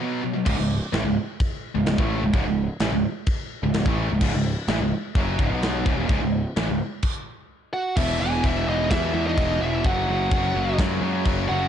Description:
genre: heavy metal.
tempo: 128 BPM.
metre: 4/4.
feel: straight.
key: C# minor.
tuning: A4 = 440 Hz.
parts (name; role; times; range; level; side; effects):
tight distorted guitar; riff; 0.0-11.7 s; C#2 to B3; -28 LUFS; left 12 dB; distortion.
tight distorted guitar; riff; 0.0-11.7 s; C#2 to B3; -27 LUFS; right 10 dB; distortion.
fuzz picked electric bass; bass; 0.5-11.7 s; C#1 to F#2; -26 LUFS; equal; overdrive.
tight metal drum kit; drums; 0.5-11.4 s; china cymbal, crash cymbal, kick drum, snare drum; -26 LUFS; equal; none.
high-gain lead guitar; melody; 7.7-11.7 s; D#5 to G#5; -27 LUFS; equal; distortion.
smooth overdriven lead guitar; second line; 7.7-11.7 s; D#4 to G#4; -33 LUFS; right 5 dB; digital delay.
room: little or no reverb.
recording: dark, warm production, nothing above 10.5 kHz.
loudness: -21 LUFS.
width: side -9 dB against mid.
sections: 0.5-8.0 A section; 8.0-11.7 B section.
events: break 0.0-0.5; stop 7.0-8.0; half time 8.0-11.7.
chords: 0.0 B5; 0.5 C#m; 8.0 E5; 9.8 F#5.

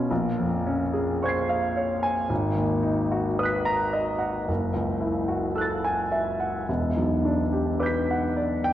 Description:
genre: classical, impressionist solo piano.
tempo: 55 BPM.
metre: 4/4.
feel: rubato.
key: unclear.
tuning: A4 = 440 Hz.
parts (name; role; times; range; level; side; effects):
clear grand piano; solo; 0.0-8.7 s; E1 to Eb7; -23 LUFS; equal; none.
room: wet church reverb, RT60 2.4 s.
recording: worn, warbling old tape, cassette tape, warbly pitch drift.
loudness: -23 LUFS.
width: side -12 dB against mid.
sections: 0.0-8.7 A section.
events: none.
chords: 0.1 Bbm9; 2.3 Abm9; 4.5 Gbm9; 6.7 Em9.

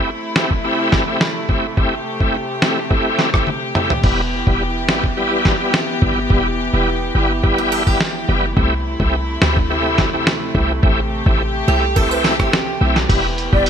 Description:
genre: dancehall.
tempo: 106 BPM.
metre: 4/4.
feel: straight.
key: E minor.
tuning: A4 = 440 Hz.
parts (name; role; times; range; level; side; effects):
bright tonewheel organ; accompaniment; 0.0-13.7 s; G3 to G4; -20 LUFS; equal; overdrive, chorus vibrato, fast rotary speaker.
warm studio string section; sustained chords; 0.0-13.7 s; C3 to G4; -23 LUFS; equal; sidechain pumping.
lo-fi sampler-style drum kit; drums; 0.4-13.7 s; crash cymbal, hi-hat, kick drum, rim click, snare drum, toms; -18 LUFS; equal; none.
short 808-style bass; bass; 4.0-13.7 s; E1 to D2; -20 LUFS; equal; none.
picked steel-string acoustic guitar; arpeggios; 7.6-13.1 s; G4 to B4; -24 LUFS; right 8 dB; none.
breathy mellow wooden flute; melody; 13.5-13.6 s; D5; -17 LUFS; left 2 dB; none.
room: moderate plate reverb, RT60 2.2 s.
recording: bright 1980s-style digital production.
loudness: -15 LUFS.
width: side -8 dB against mid.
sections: 0.0-13.1 A section.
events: drum fill 3.5-4.0.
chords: 0.0 C6; 4.0 Em; 8.6 C6; 10.8 Am7; 13.1 Em.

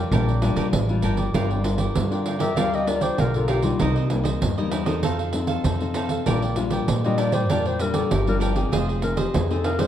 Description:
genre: samba and choro.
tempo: 98 BPM.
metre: 4/4.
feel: straight.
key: G minor.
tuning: A4 = 436 Hz.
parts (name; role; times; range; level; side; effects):
dark clarinet; second line; 0.0-9.9 s; Eb4 to F5; -27 LUFS; left 2 dB; none.
cavaquinho; accompaniment; 0.0-9.9 s; D4 to G5; -30 LUFS; right 4 dB; none.
nylon-string guitar; accompaniment; 0.0-9.9 s; G2 to Bb4; -26 LUFS; left 5 dB; none.
upright bass; bass; 0.0-9.9 s; F1 to Bb2; -25 LUFS; equal; none.
pandeiro; percussion; 0.1-9.9 s; none; -26 LUFS; right 3 dB; none.
room: moderate large studio reverb, RT60 1.2 s.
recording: dark, warm production.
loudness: -20 LUFS.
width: side -10 dB against mid.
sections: 0.0-1.3 A section; 1.3-9.9 B section.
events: clarinet solo 1.3-9.9.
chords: 0.0 Bb6; 1.3 Gm7; 3.8 Cm7; 5.0 F7; 6.3 Bb6; 8.7 Fm7.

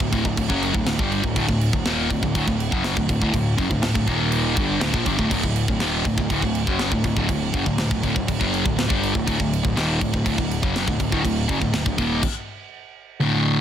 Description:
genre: heavy metal.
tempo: 122 BPM.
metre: 4/4.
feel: straight.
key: unclear.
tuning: A4 = 440 Hz.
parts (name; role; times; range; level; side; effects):
sludgy distorted guitar; riff; 0.0-13.6 s; D2 to G3; -22 LUFS; equal; overdrive.
fuzz picked electric bass; bass; 0.0-12.2 s; D1 to Bb1; -27 LUFS; equal; overdrive.
tight metal drum kit; drums; 0.0-12.3 s; crash cymbal, kick drum, snare drum; -25 LUFS; equal; none.
room: light reverb.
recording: dense, heavily limited modern master.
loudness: -19 LUFS.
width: side -10 dB against mid.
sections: 0.0-13.2 A section.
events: stop 12.2-13.2.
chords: 0.0 D; 4.1 Eb5; 4.6 D; 12.0 Eb5; 12.5 N.C..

